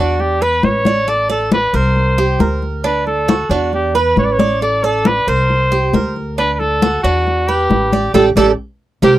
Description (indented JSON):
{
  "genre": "latin, Cuban son and guajira",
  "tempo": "136 BPM",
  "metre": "4/4",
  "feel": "straight",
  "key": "unclear",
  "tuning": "A4 = 437 Hz",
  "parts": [
    { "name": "clear trumpet", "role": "melody", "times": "0.0-9.1 s", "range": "F#4 to D5", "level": "-16 LUFS", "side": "equal", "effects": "none" },
    { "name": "Cuban tres", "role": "arpeggios", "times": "0.0-9.2 s", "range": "D4 to D5", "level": "-18 LUFS", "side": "right 5 dB", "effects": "none" },
    { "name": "upright bass", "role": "bass", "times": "0.0-9.2 s", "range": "A1 to E2", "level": "-19 LUFS", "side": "left 1 dB", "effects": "none" },
    { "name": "congas", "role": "percussion", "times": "0.2-9.1 s", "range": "none", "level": "-18 LUFS", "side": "left 2 dB", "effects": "none" }
  ],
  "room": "light reverb",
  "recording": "dry, close 1970s-style studio recording",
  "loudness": "-12 LUFS",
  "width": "side -14 dB against mid",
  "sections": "0.0-9.2 A section",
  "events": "band accent 8.1-9.2",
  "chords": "0.2 E5; 1.1 Asus4; 2.0 C5; 2.8 Dadd9; 3.7 E5; 4.6 Asus4; 5.5 C5; 6.4 Dadd9; 7.3 Em7; 8.1 A7sus4"
}